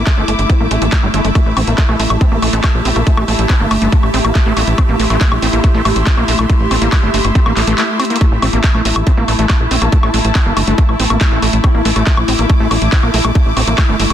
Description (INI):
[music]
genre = psychedelic trance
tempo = 140 BPM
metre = 4/4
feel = straight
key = A phrygian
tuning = A4 = 441 Hz
[part]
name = evolving wavetable pad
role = sustained chords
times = 0.0-14.1 s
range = A3 to G4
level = -20 LUFS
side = right 1 dB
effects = ensemble chorus, built-in reverb, sidechain pumping
[part]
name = overdriven acid bass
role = riff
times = 0.0-14.0 s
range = G3 to C4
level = -20 LUFS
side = equal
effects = distortion, auto-pan, sidechain pumping, dub echo
[part]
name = tight sequencer bass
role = bass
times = 0.0-14.1 s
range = G1 to Bb1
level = -16 LUFS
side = equal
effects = none
[part]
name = dark studio string section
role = texture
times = 0.0-14.1 s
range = A3 to D6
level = -22 LUFS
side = left 2 dB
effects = sidechain pumping
[part]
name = electronic kick drum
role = drums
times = 0.1-13.9 s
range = none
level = -12 LUFS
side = equal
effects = overdrive
[part]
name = techno drum kit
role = drums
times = 0.1-14.1 s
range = handclaps, hi-hat, woodblock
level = -19 LUFS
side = left 1 dB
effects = none
[sound]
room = light reverb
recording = dense, heavily limited modern master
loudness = -10 LUFS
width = side -10 dB against mid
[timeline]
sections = 0.0-14.1 A section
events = break 7.8-8.2; drum fill 8.0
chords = 0.0 A5